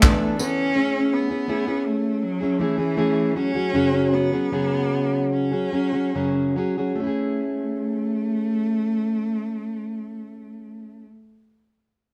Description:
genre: acoustic pop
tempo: 69-82 BPM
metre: 4/4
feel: straight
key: A major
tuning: A4 = 440 Hz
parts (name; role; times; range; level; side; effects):
- warm cello; melody; 0.0-11.0 s; E3 to C#4; -28 LUFS; equal; none
- fingerpicked plugged-in steel-string acoustic guitar; accompaniment; 0.0-11.1 s; F#2 to A4; -25 LUFS; equal; none
- mellow brass ensemble; sustained chords; 0.0-0.7 s; E2 to A3; -37 LUFS; equal; none
- vintage brush drum kit; drums; 0.0-0.6 s; handclaps, kick drum, tambourine; -19 LUFS; equal; none
room: moderate studio reverb, RT60 0.8 s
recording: band playing live in one room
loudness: -23 LUFS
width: mono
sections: 0.8-7.0 A section; 7.0-10.4 B section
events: slowing down 0.8-7.0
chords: 0.0 E7sus4; 0.8 Amaj7; 3.4 F#sus2; 7.0 Amaj7

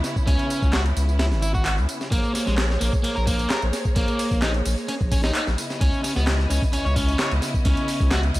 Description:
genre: breakbeat, breaks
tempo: 130 BPM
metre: 4/4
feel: straight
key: unclear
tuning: A4 = 441 Hz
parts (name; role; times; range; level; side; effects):
- dark studio string section; sustained chords; 0.0-8.4 s; Db3 to Eb5; -30 LUFS; equal; sidechain pumping
- breakbeat sampler-style drum kit; drums; 0.0-8.4 s; kick drum, ride cymbal, snare drum; -24 LUFS; equal; small room ambience
- punchy analog drum machine; drums; 0.0-8.4 s; handclaps, hi-hat, tambourine; -31 LUFS; equal; overdrive, small room ambience
- crunchy overdriven guitar; riff; 0.3-8.2 s; Ab3 to Db5; -27 LUFS; equal; tube saturation, vintage 12-bit sampler grit, ping-pong delay
- saturated sub bass; bass; 0.3-8.4 s; Ab1 to Db2; -22 LUFS; equal; none
room: little or no reverb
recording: vinyl crackle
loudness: -20 LUFS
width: side -17 dB against mid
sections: 0.0-8.4 A section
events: none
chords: 0.0 Dbm7; 2.1 Bbm9; 5.6 Dbm9

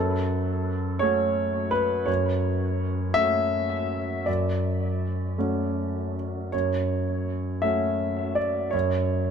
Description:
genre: neoclassical minimalist piano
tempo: 54 BPM (dotted quarters)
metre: 6/8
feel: rubato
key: F# minor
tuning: A4 = 438 Hz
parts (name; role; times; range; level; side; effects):
- warm concert grand piano; solo; 0.0-9.3 s; F#2 to E5; -23 LUFS; equal; tape echo
room: light reverb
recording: close, detailed microphones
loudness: -23 LUFS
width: side -7 dB against mid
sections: 0.0-9.3 A section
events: none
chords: 0.0 F#m

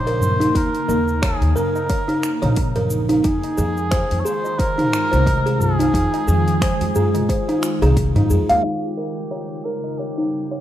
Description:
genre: organic downtempo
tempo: 89 BPM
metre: 4/4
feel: swing 57% on 16ths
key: unclear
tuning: A4 = 440 Hz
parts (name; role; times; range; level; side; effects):
- trumpet with cup mute; melody; 0.0-10.6 s; G4 to Db5; -26 LUFS; equal; digital delay
- ethereal airy pad; sustained chords; 0.0-10.6 s; Db3 to F4; -26 LUFS; equal; ensemble chorus, built-in reverb, sidechain pumping
- buzzing kalimba; arpeggios; 0.0-10.6 s; Eb4 to F5; -22 LUFS; equal; low-pass filter, digital delay
- upright bass; bass; 0.0-8.6 s; Bb1 to Ab2; -20 LUFS; equal; sidechain pumping
- deep house drum kit; drums; 0.1-10.6 s; finger snaps, hi-hat, shaker, toms; -29 LUFS; equal; studio ambience
- tabla; percussion; 0.1-10.5 s; none; -27 LUFS; right 1 dB; none
- electronic kick drum; drums; 0.6-8.1 s; none; -22 LUFS; equal; studio ambience
room: light reverb, studio reverb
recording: rough home demo mix, low-pass filter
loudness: -17 LUFS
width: side -12 dB against mid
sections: 0.0-8.6 A section; 8.6-10.6 B section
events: filter sweep on kalimba 8.6-10.6; filter sweep 8.6-10.6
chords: 0.0 Eb7(no3); 3.2 Fm7; 8.6 Eb7

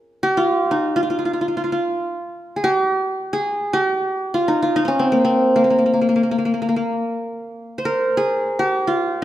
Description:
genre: Turkish makam ensemble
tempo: free time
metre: none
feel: none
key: F makam ussak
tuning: A4 = 436 Hz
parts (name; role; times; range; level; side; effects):
- qanun; solo; 0.2-9.2 s; Bb3 to C5; -17 LUFS; equal; none
room: wet recital hall reverb, RT60 1.5 s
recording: none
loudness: -17 LUFS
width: side -13 dB against mid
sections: 0.0-9.2 A section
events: none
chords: none

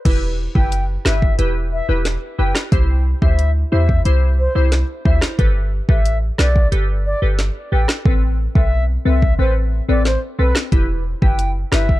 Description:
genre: dancehall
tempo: 90 BPM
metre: 4/4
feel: straight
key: E minor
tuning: A4 = 439 Hz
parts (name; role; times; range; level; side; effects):
- glassy wavetable pluck; accompaniment; 0.1-11.8 s; C4 to C5; -24 LUFS; left 2 dB; chorus
- clean 808-style bass; bass; 0.1-12.0 s; E1 to E2; -17 LUFS; equal; none
- afro-pop drum kit; drums; 0.1-12.0 s; crash cymbal, hi-hat, kick drum, rim click, snare drum; -17 LUFS; equal; none
- bright reedy baroque flute; melody; 0.6-12.0 s; B4 to G5; -25 LUFS; left 2 dB; tape echo
room: little or no reverb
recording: dark, warm production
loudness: -15 LUFS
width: side -16 dB against mid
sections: 0.1-12.0 A section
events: hi-hats muted 8.1-10.7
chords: 0.1 Em; 2.7 C; 5.4 Gadd9; 8.1 Amadd9; 10.7 Em

